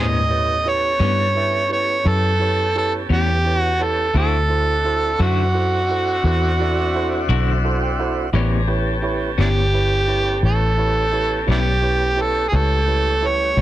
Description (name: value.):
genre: blues.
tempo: 57 BPM (dotted quarters).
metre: 12/8.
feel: straight.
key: A mixolydian.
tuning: A4 = 440 Hz.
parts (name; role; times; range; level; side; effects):
overdriven harmonica; melody; 0.0-13.6 s; D4 to D#5; -19 LUFS; right 2 dB; none.
barky tine electric piano; accompaniment; 0.0-13.6 s; E4 to G5; -27 LUFS; right 5 dB; overdrive.
electric guitar through a small old amp; accompaniment; 0.0-13.6 s; A2 to F#4; -26 LUFS; left 8 dB; tremolo.
tonewheel organ; sustained chords; 0.0-13.6 s; D3 to Bb4; -28 LUFS; left 1 dB; slow rotary speaker.
vintage muted fingered electric bass; bass; 0.0-13.6 s; G1 to A2; -20 LUFS; left 1 dB; none.
room: little or no reverb.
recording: dense, heavily limited modern master.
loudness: -16 LUFS.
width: side -14 dB against mid.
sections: 0.0-13.6 A section.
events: tine electric piano fill 7.3-8.3.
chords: 0.0 A9; 4.1 D9; 8.3 A9.